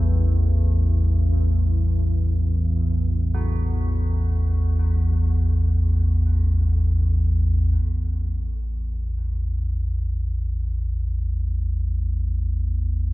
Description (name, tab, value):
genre	dark ambient drone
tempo	free time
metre	none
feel	none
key	unclear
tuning	A4 = 440 Hz
part	carillon bells	arpeggios	0.0-9.2 s	E3 to F#4	-38 LUFS	right 1 dB	ping-pong delay
part	deep rumbling drone	drone	0.0-13.1 s	A1 to E2	-19 LUFS	equal	built-in reverb, lush chorus
room	moderate huge ambient reverb, RT60 7.3 s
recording	none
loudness	-20 LUFS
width	side -19 dB against mid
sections	0.0-7.8 A section; 7.8-13.1 B section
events	fade-out on church bells 0.0-7.8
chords	0.1 A5